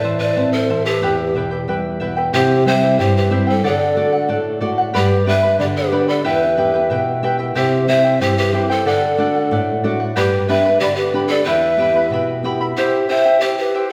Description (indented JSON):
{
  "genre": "andean folk, Andean ensemble",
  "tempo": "92 BPM",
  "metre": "2/4",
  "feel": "straight",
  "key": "unclear",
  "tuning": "A4 = 440 Hz",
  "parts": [
    { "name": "mellow hollow polished pan flute", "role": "melody", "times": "0.0-13.9 s", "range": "B4 to E5", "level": "-21 LUFS", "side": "equal", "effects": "none" },
    { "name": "breathy pan flute", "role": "second line", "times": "0.0-13.9 s", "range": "G4 to C5", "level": "-24 LUFS", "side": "equal", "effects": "none" },
    { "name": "charango", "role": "accompaniment", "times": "0.0-13.9 s", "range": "E4 to B5", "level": "-24 LUFS", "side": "equal", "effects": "none" },
    { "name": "nylon-string guitar", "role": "accompaniment", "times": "0.0-12.7 s", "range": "E2 to G4", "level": "-22 LUFS", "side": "equal", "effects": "none" }
  ],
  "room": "wet recital hall reverb, RT60 1.5 s",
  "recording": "heard from further back in the room",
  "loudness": "-17 LUFS",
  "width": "mono",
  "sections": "0.0-2.3 A section; 2.3-12.8 B section; 12.8-13.9 B section",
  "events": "none",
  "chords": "0.0 Am; 1.0 Em; 2.3 C; 3.6 D; 4.9 G; 6.2 Em; 7.6 C; 8.9 D; 10.2 G; 11.5 Em; 12.8 C"
}